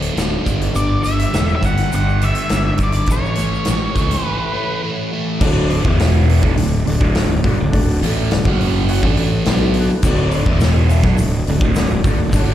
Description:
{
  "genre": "classic rock",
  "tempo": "104 BPM",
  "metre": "4/4",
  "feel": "straight",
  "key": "D major",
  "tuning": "A4 = 440 Hz",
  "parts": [
    { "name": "crunchy overdriven guitar", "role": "riff", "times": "0.0-12.5 s", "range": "D2 to B3", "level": "-20 LUFS", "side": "equal", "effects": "phaser" },
    { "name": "fuzz fingered electric bass", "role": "bass", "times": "0.0-12.5 s", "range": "D1 to C#2", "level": "-17 LUFS", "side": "equal", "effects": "overdrive" },
    { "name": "huge arena drum kit", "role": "drums", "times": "0.0-12.5 s", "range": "crash cymbal, hi-hat, kick drum, snare drum", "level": "-20 LUFS", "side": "equal", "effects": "none" },
    { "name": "tube shaker", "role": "percussion", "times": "0.0-4.2, 10.0-12.5 s", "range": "none", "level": "-38 LUFS", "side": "left 3 dB", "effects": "none" },
    { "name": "octave-fuzz lead guitar", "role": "melody", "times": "0.8-4.8 s", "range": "C#5 to F#5", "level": "-23 LUFS", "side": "left 1 dB", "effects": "distortion, plate reverb, slapback echo, digital delay" },
    { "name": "dark upright piano", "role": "accompaniment", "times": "5.4-12.5 s", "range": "B3 to F#5", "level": "-26 LUFS", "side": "left 2 dB", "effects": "plate reverb, slapback echo" }
  ],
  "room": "light reverb",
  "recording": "live gig heard through the venue's PA, recital hall reverb",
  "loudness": "-14 LUFS",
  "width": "side -12 dB against mid",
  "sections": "0.0-5.4 A section; 5.4-12.5 B section",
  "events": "break 4.3-5.4",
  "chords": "0.5 G5; 3.1 A; 5.4 D; 5.9 E5; 6.4 D; 8.5 F#5; 9.0 D; 10.5 E5; 11.0 D",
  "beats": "0.17 | 0.76 1.34 1.93 2.51 | 3.09 3.67 4.26 4.84 | 5.42 6.00 6.58 7.16 | 7.73 8.31 8.89 9.46 | 10.04 10.62 11.19 11.77 | 12.34"
}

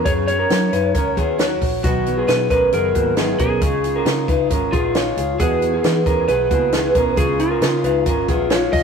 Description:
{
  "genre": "jangly indie pop",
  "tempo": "135 BPM",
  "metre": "4/4",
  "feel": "straight",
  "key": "unclear",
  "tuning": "A4 = 440 Hz",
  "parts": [
    { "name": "lightly driven lead guitar", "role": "melody", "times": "0.0-8.8 s", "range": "E#4 to D#5", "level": "-22 LUFS", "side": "right 1 dB", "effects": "none" },
    { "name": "picked steel-string acoustic guitar", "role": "accompaniment", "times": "0.0-8.8 s", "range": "B2 to B4", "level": "-24 LUFS", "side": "right 4 dB", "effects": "none" },
    { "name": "electric guitar through a small old amp", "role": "arpeggios", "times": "0.0-8.8 s", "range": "A#3 to C#5", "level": "-20 LUFS", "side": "left 3 dB", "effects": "none" },
    { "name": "vintage muted picked electric bass", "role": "bass", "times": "0.0-8.8 s", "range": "E#1 to F#3", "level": "-25 LUFS", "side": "equal", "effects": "none" },
    { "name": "compact cocktail drum kit", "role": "drums", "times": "0.1-8.8 s", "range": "hi-hat, kick drum, snare drum", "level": "-21 LUFS", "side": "equal", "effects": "none" }
  ],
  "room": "light reverb",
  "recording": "rough rehearsal-room recording",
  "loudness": "-16 LUFS",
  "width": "side -6 dB against mid",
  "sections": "0.0-8.8 A section",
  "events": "none",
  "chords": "0.1 F#; 1.8 B; 3.6 C#add9; 5.4 E; 7.2 C#",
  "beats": "| 0.06 0.50 0.95 1.39 | 1.84 2.28 2.73 3.17 | 3.62 4.06 4.51 4.95 | 5.40 5.84 6.29 6.73 | 7.18 7.62 8.07 8.51"
}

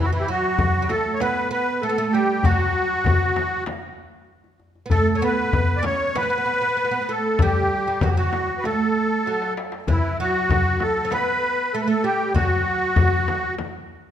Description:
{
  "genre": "Arabic maqam ensemble",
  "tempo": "97 BPM",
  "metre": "4/4",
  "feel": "straight",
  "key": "unclear",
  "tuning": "A4 = 440 Hz",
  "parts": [
    { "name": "musette accordion", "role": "melody", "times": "0.0-13.6 s", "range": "E4 to D5", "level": "-22 LUFS", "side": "equal", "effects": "none" },
    { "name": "oud", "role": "second line", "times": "0.0-13.5 s", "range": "E3 to C#4", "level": "-26 LUFS", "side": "right 4 dB", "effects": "none" },
    { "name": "darbuka", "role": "percussion", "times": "0.1-13.7 s", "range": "none", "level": "-25 LUFS", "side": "left 2 dB", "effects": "none" },
    { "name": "frame drum", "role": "percussion", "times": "0.6-13.7 s", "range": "none", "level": "-25 LUFS", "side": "left 3 dB", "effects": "none" }
  ],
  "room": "moderate scoring stage reverb, RT60 1.5 s",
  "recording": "minimal, uncompressed stereo recording",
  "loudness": "-19 LUFS",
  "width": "side -10 dB against mid",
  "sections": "0.0-14.1 A section",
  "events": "drum fill 9.3-9.9",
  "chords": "none",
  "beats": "0.58 1.21 1.82 | 2.44 3.06 3.68 4.30 | 4.92 5.54 6.16 6.78 | 7.40 8.02 8.64 9.26 | 9.88 10.50 11.12 11.73 | 12.35 12.97 13.59"
}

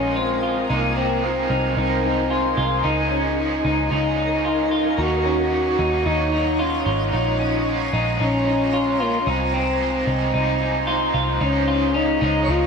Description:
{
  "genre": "dream pop",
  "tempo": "112 BPM",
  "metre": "4/4",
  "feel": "straight",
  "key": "Db major",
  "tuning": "A4 = 440 Hz",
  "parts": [
    { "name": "mellow French horn", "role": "melody", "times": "0.0-12.7 s", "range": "Bb3 to Gb4", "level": "-24 LUFS", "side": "left 3 dB", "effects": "tape echo" },
    { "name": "raw garage guitar", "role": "accompaniment", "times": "0.0-12.7 s", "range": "Bb2 to Gb4", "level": "-28 LUFS", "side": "right 4 dB", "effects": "overdrive, tremolo, wide subtle chorus" },
    { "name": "shimmering ambient pad", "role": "sustained chords", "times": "0.0-12.7 s", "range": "Eb4 to Db6", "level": "-27 LUFS", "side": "right 4 dB", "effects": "chorus, built-in reverb" },
    { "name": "semi-hollow electric guitar", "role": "arpeggios", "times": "0.0-12.7 s", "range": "C4 to F4", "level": "-24 LUFS", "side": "left 2 dB", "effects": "lush chorus, tape echo" },
    { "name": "vintage muted picked electric bass", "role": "bass", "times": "0.0-12.7 s", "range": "Ab1 to Eb2", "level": "-25 LUFS", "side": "right 1 dB", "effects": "none" },
    { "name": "twinkling granular texture", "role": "texture", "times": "0.8-7.4, 12.4-12.7 s", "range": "Bb4 to Eb5", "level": "-35 LUFS", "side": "right 1 dB", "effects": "built-in reverb, tape echo" }
  ],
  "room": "moderate concert hall reverb, RT60 2.0 s",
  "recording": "none",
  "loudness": "-18 LUFS",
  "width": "side -5 dB against mid",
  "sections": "0.0-11.4 A section; 11.4-12.7 B section",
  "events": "none",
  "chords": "0.0 Bbm7; 0.7 Abadd9/C; 2.8 Dbadd9; 5.0 Ebm7; 7.1 Bbm7; 9.3 Abadd9/C; 11.4 Dbadd9",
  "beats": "0.16 | 0.70 1.24 1.77 2.31 | 2.84 3.38 3.91 4.45 | 4.99 5.52 6.06 6.59 | 7.13 7.66 8.20 8.73 | 9.27 9.81 10.34 10.88 | 11.41 11.95 12.48"
}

